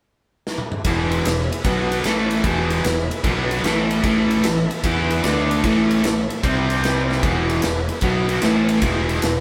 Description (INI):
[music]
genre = blues rock power trio and southern rock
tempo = 150 BPM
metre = 4/4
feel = swing 67% on 8ths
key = E mixolydian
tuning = A4 = 440 Hz
[part]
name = big rock drum kit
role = drums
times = 0.5-9.4 s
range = kick drum, ride cymbal, snare drum, toms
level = -26 LUFS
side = equal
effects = none
[part]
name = overdriven tonewheel organ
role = sustained chords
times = 0.8-9.4 s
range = A3 to G5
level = -34 LUFS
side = equal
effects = none
[part]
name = fuzz fingered electric bass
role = bass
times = 0.8-9.4 s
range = E1 to E2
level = -28 LUFS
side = equal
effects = overdrive
[part]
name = overdriven electric guitar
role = riff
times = 0.9-9.4 s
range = E2 to E4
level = -22 LUFS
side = equal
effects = none
[sound]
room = moderate stone room reverb, RT60 1.3 s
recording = band playing live in one room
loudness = -20 LUFS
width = mono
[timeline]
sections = 0.8-9.4 A section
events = drum fill 0.4-0.8, 7.0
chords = 0.0 N.C.; 0.8 E; 1.6 B5; 2.0 A5; 2.4 E; 3.2 B5; 3.6 A5; 4.8 E5; 5.2 D5; 5.6 A5; 6.4 C5; 7.2 E; 8.0 B5; 8.4 A5; 8.8 E